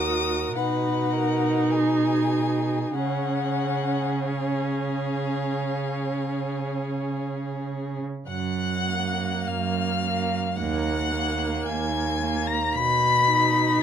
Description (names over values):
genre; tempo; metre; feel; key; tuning
classical, slow romantic movement for string quartet; 43-57 BPM; 4/4; rubato; F# major; A4 = 440 Hz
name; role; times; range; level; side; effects
rich violin; melody; 0.0-13.8 s; E#5 to B6; -30 LUFS; left 9 dB; none
warm violin; second line; 0.0-13.8 s; G#4 to B5; -29 LUFS; left 3 dB; none
rich viola; accompaniment; 0.0-13.8 s; A#3 to F#4; -28 LUFS; right 1 dB; none
rich cello; bass; 0.0-13.8 s; D#2 to C#3; -27 LUFS; right 4 dB; none
room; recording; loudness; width
light reverb; none; -23 LUFS; side -8 dB against mid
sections
0.0-8.3 A section; 8.3-13.8 B section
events
none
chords
0.0 D#m; 0.6 G#m7/B; 2.9 C#; 8.3 F#; 10.6 D#m; 12.7 B